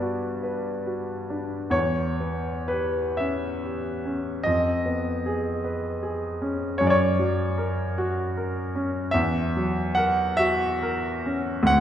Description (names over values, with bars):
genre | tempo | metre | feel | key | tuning
classical, romantic nocturne for solo piano | 39-52 BPM (dotted quarters) | 6/8 | rubato | unclear | A4 = 440 Hz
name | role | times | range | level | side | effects
clear grand piano | solo | 0.0-11.8 s | D2 to F#5 | -23 LUFS | equal | none
room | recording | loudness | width
wet recital hall reverb, RT60 1.5 s | heard from further back in the room | -23 LUFS | side -10 dB against mid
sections
0.0-11.8 A section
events
none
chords
0.0 Gmaj7; 1.7 C#m7b5/E; 4.5 C#7/E#; 6.8 F#; 9.2 F#7/E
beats
0.43 | 1.73 3.19 | 4.46 5.64 | 6.80 7.97 | 9.15 10.39 | 11.70